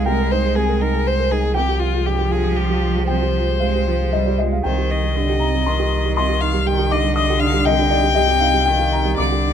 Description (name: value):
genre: neoclassical piano and strings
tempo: 118 BPM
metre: 3/4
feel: uneven beats, rubato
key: C minor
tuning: A4 = 441 Hz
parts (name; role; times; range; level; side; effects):
- rich violin; melody; 0.0-9.5 s; F4 to G5; -21 LUFS; left 5 dB; none
- rich cello; second line; 0.0-9.5 s; C3 to Ab3; -24 LUFS; right 4 dB; none
- warm upright piano; accompaniment; 0.0-9.5 s; C2 to Eb6; -22 LUFS; right 2 dB; none
- pure sine sub bass; bass; 0.0-9.5 s; C2; -21 LUFS; equal; none
room: little or no reverb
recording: minimal, uncompressed stereo recording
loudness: -16 LUFS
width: side -8 dB against mid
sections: 0.0-9.5 A section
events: none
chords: 0.0 Abadd9/C; 1.6 Fmadd9/C; 4.7 Cmadd9